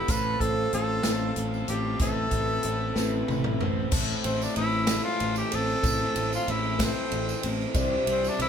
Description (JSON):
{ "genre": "folk rock and heartland rock", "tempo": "63 BPM (dotted quarters)", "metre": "6/8", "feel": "straight", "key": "unclear", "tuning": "A4 = 440 Hz", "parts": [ { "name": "breathy tenor saxophone", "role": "melody", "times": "0.0-8.5 s", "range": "C4 to B4", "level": "-29 LUFS", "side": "equal", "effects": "none" }, { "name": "picked twelve-string acoustic guitar", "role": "accompaniment", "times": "0.0-8.5 s", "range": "A2 to C5", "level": "-33 LUFS", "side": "left 2 dB", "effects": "none" }, { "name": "accordion", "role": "sustained chords", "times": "0.0-3.9 s", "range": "C4 to B5", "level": "-39 LUFS", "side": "right 5 dB", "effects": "none" }, { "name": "crunchy overdriven guitar", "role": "riff", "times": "0.0-8.5 s", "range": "A2 to B4", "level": "-34 LUFS", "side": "right 1 dB", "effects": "none" }, { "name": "fingered electric bass", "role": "bass", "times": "0.0-8.5 s", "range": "A1 to C2", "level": "-30 LUFS", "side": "left 1 dB", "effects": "none" }, { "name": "natural country drum kit", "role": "drums", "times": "0.1-8.5 s", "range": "crash cymbal, hi-hat, kick drum, ride cymbal, snare drum, toms", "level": "-29 LUFS", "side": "right 1 dB", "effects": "none" }, { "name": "tambourine", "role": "percussion", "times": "0.1-8.4 s", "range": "none", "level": "-40 LUFS", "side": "right 7 dB", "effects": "none" } ], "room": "moderate studio reverb, RT60 0.7 s", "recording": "band playing live in one room", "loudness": "-24 LUFS", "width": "side -8 dB against mid", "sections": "0.0-3.9 A section; 3.9-8.5 B section", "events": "drum fill 3.0-3.9", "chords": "0.1 F/A; 2.0 Amadd9; 3.9 Am; 7.8 Cadd9", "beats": "| 0.09 1.05 | 2.01 2.97 | 3.93 4.89 | 5.84 6.80 | 7.76" }